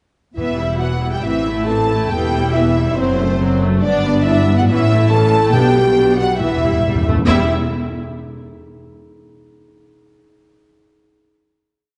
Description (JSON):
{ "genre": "cinematic, heroic adventure film score", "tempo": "139 BPM", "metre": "4/4", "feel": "straight", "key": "E minor", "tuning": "A4 = 440 Hz", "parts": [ { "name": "warm studio violin section", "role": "melody", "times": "0.4-7.5 s", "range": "C5 to A5", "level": "-27 LUFS", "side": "equal", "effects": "none" }, { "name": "warm symphonic violin section", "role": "second line", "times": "0.4-7.5 s", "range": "C5 to A5", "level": "-26 LUFS", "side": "equal", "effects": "none" }, { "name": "rich symphonic viola section", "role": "accompaniment", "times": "0.4-7.5 s", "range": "E3 to E4", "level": "-24 LUFS", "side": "equal", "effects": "none" }, { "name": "dark French horn section", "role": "sustained chords", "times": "0.4-7.5 s", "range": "C4 to A4", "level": "-22 LUFS", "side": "equal", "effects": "none" }, { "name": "warm symphonic cello section", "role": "bass", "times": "0.4-7.5 s", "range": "E2 to B2", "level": "-23 LUFS", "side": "equal", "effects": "none" }, { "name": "warm symphonic double bass section", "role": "bass", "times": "0.4-7.5 s", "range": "E1 to B1", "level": "-23 LUFS", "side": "equal", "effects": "none" }, { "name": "timpani", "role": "percussion", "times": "0.4-1.0, 5.5-7.5 s", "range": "E2 to B2", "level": "-24 LUFS", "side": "equal", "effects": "none" } ], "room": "wet concert hall reverb, RT60 2.0 s", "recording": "nothing above 10.5 kHz", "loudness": "-16 LUFS", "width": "mono", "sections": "0.4-7.3 theme; 7.3-9.0 final chord", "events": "timpani fill 6.4-7.3", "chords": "0.4 Em; 1.2 Am; 2.1 Em; 3.0 F#dim; 3.8 G; 4.7 A; 5.5 G/B; 6.4 Em" }